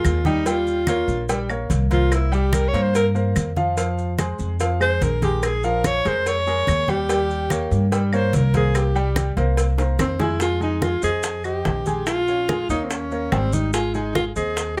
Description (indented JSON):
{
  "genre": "Afro-Cuban jazz",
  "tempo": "145 BPM",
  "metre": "4/4",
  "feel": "straight",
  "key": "F minor",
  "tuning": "A4 = 443 Hz",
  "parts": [
    { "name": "breathy alto saxophone", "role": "melody", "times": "0.0-14.8 s", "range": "C4 to Db5", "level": "-25 LUFS", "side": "equal", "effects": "slapback echo" },
    { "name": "warm baby grand piano", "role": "accompaniment", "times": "0.0-14.8 s", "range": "F3 to Ab5", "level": "-29 LUFS", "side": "equal", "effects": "none" },
    { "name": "claves", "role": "percussion", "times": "0.0-14.8 s", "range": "none", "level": "-33 LUFS", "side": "equal", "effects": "none" },
    { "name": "congas", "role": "percussion", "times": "0.0-14.8 s", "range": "none", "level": "-29 LUFS", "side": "equal", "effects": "none" },
    { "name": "upright bass", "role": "bass", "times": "0.1-14.8 s", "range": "Ab1 to G2", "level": "-25 LUFS", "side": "equal", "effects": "none" },
    { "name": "cowbell and bongos", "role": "percussion", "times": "0.1-14.8 s", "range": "none", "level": "-32 LUFS", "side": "equal", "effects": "none" },
    { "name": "maracas", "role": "percussion", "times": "0.1-14.8 s", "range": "none", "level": "-39 LUFS", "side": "equal", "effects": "none" }
  ],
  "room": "little or no reverb",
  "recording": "close, detailed microphones",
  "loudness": "-21 LUFS",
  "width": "mono",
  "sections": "0.0-10.4 A section; 10.4-14.8 B section",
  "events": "alto saxophone solo 0.0-10.4; drum fill 9.8-10.4",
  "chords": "0.5 Eb7; 2.1 C5; 3.8 Fm; 5.4 Bbm7; 7.1 Eb7; 8.8 C5; 10.4 Fm9; 12.1 Bbm7; 12.9 Eb7; 13.7 Ab6"
}